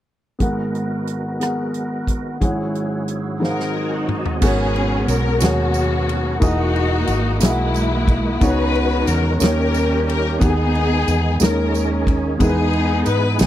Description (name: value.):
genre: slow gospel.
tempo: 60 BPM (dotted quarters).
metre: 6/8.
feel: straight.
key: G# minor.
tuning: A4 = 440 Hz.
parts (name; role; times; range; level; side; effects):
warm upright piano; accompaniment; 0.4-13.5 s; G#1 to F#5; -21 LUFS; equal; none.
tonewheel organ; sustained chords; 0.4-13.5 s; G#2 to G#5; -28 LUFS; right 4 dB; fast rotary speaker, chorus vibrato.
natural country drum kit; drums; 0.4-13.5 s; crash cymbal, hi-hat, kick drum, ride cymbal, rim click, snare drum, toms; -20 LUFS; equal; none.
warm symphonic string section; melody; 3.4-13.5 s; G#3 to B4; -22 LUFS; left 3 dB; none.
vintage muted fingered electric bass; bass; 4.4-13.5 s; E1 to G#2; -21 LUFS; equal; none.
tambourine; percussion; 4.4-13.5 s; none; -31 LUFS; right 20 dB; none.
room: small room reverb.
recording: dry, close 1970s-style studio recording.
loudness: -16 LUFS.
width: side -12 dB against mid.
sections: 0.4-4.4 A section; 4.4-13.5 B section.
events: drum fill 3.4-4.4; tonewheel organ fill 3.4-4.4.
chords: 0.4 G#m9; 2.4 E69/G#; 3.4 G#7; 4.4 G#m11; 6.4 Emaj9#11; 8.4 C#9sus4; 9.4 D#7; 10.4 G#m/D#; 11.4 D#7sus4; 12.4 Emaj7.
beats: | 0.41 1.41 | 2.42 3.42 | 4.42 5.42 | 6.42 7.42 | 8.42 9.41 | 10.41 11.40 | 12.40 13.39.